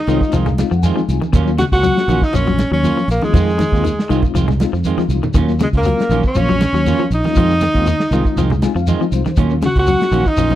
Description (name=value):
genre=afrobeat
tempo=120 BPM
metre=4/4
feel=swing 54% on 16ths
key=Eb dorian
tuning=A4 = 440 Hz
part: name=clear tenor saxophone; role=melody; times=0.0-10.6 s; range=Ab3 to Gb4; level=-18 LUFS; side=equal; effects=none
part: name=clear trumpet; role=second line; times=0.0-10.6 s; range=Ab4 to Gb5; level=-26 LUFS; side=right 3 dB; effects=none
part: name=mellow reed electric piano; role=accompaniment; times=0.1-10.6 s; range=Gb3 to Ab5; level=-23 LUFS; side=left 10 dB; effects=tremolo
part: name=semi-hollow electric guitar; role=arpeggios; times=0.1-10.6 s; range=Db3 to Ab3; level=-23 LUFS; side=left 6 dB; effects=none
part: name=clean electric guitar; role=stabs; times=0.1-10.6 s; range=Eb3 to F4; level=-24 LUFS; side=right 9 dB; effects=none
part: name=fingered electric bass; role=bass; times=0.1-10.6 s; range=Bb1 to F2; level=-18 LUFS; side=equal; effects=none
part: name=warm soul drum kit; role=drums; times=0.1-10.5 s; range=hi-hat, kick drum, snare drum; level=-18 LUFS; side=equal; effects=none
part: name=shekere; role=percussion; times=0.1-10.6 s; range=none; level=-24 LUFS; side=left 1 dB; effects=none
part: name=congas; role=percussion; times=0.3-10.6 s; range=none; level=-24 LUFS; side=right 4 dB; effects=none
room=studio reverb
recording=dry, close 1970s-style studio recording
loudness=-13 LUFS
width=side -13 dB against mid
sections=0.0-10.6 A section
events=reed electric piano fill 0.0-1.3, 8.4-9.4; drum fill 5.0-5.3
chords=0.0 Fm7; 1.3 Ebm9; 3.3 Fm7; 5.3 Ebm9; 7.4 Fm7; 9.4 Ebm9